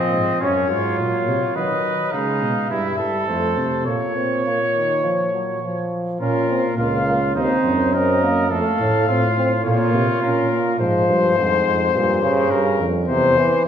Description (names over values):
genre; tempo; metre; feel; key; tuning
classical, imitative canzona for brass ensemble; 104 BPM; 4/4; straight; Bb minor; A4 = 441 Hz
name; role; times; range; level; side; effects
warm cornet; melody; 0.0-13.6 s; Bb4 to F5; -24 LUFS; left 6 dB; none
warm trumpet; second line; 0.0-10.8 s; C4 to Db5; -23 LUFS; right 3 dB; none
clear euphonium; accompaniment; 0.0-13.7 s; Ab2 to Db4; -22 LUFS; right 1 dB; none
clear tuba; bass; 0.0-13.5 s; Db2 to D#3; -22 LUFS; right 1 dB; none
room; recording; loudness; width
wet recital hall reverb, RT60 1.6 s; heard from further back in the room; -17 LUFS; side -8 dB against mid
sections
0.0-6.2 A section; 6.2-13.7 B section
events
none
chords
0.4 Gb; 1.6 B/D#; 2.7 Emadd11/G; 3.3 F; 3.9 Bbm; 7.4 Cdim/Eb; 8.5 F; 9.7 Bbm; 10.8 Fm; 11.9 Gdim; 13.1 C/E